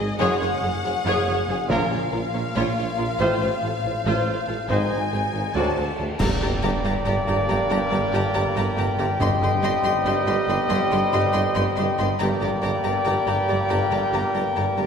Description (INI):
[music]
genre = cinematic, epic orchestral film score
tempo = 280 BPM (eighths)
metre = 7/8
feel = straight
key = Bb minor, G minor from 6.2 s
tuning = A4 = 435 Hz
[part]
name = clear symphonic violin section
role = melody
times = 0.0-14.9 s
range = Eb5 to C6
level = -29 LUFS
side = left 4 dB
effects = none
[part]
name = warm studio violin section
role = second line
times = 0.0-14.9 s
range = Ab4 to Eb5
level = -32 LUFS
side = left 3 dB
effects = none
[part]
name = rich symphonic viola section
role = accompaniment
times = 0.0-14.9 s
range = Eb4 to Ab4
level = -30 LUFS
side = right 1 dB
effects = none
[part]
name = warm woodwind section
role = sustained chords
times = 0.0-14.9 s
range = C4 to Ab5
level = -30 LUFS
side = left 3 dB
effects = none
[part]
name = rich symphonic double bass section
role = bass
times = 0.0-14.8 s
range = Gb1 to D2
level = -30 LUFS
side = right 2 dB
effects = none
[part]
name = warm symphonic cello section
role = bass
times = 0.0-14.8 s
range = D2 to Bb2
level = -30 LUFS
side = right 2 dB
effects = none
[part]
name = warm tuba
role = bass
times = 0.0-14.9 s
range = Gb1 to D2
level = -29 LUFS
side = right 2 dB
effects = none
[part]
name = dark trombone section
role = sustained chords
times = 0.2-14.9 s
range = Gb2 to Ab3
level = -32 LUFS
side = right 4 dB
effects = none
[part]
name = warm French horn section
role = sustained chords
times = 0.2-14.9 s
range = Bb3 to G4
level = -30 LUFS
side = left 2 dB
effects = none
[part]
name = mellow trumpet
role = stabs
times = 0.2-14.9 s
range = Ab4 to Eb5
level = -29 LUFS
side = right 1 dB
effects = none
[part]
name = timpani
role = percussion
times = 1.7-2.3, 6.2-6.8, 9.2-9.8 s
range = G2 to Bb2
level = -30 LUFS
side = left 1 dB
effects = none
[part]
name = cymbal swell, clash cymbals and concert bass drum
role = percussion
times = 3.2-7.0 s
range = none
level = -32 LUFS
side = equal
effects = none
[sound]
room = wet scoring stage reverb, RT60 1.7 s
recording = heard from further back in the room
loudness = -20 LUFS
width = side -6 dB against mid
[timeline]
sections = 0.0-6.2 A section; 6.2-14.9 B section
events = band accent 6.2-6.6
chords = 0.2 Gbsus2; 1.7 Bbm; 3.2 F/A; 4.7 Ab; 5.6 D7; 6.2 Gm; 9.2 Cm/G; 12.2 Gm